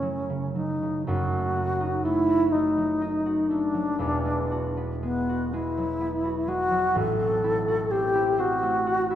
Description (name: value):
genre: classical, impressionist duo for alto flute and harp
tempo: 37-43 BPM (dotted quarters)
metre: 6/8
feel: rubato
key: F# dorian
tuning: A4 = 438 Hz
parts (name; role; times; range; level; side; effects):
- mellow wooden-headed alto flute; melody; 0.0-9.2 s; B3 to A4; -25 LUFS; left 1 dB; none
- concert harp; accompaniment; 0.0-9.2 s; E1 to F#4; -28 LUFS; right 1 dB; none
room: wet scoring stage reverb, RT60 2.0 s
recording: heard from further back in the room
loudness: -23 LUFS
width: side -10 dB against mid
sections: 0.0-1.1 A section; 1.1-9.2 B section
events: none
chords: 0.0 F#m7; 1.1 F#m6; 4.0 E9; 7.0 Am6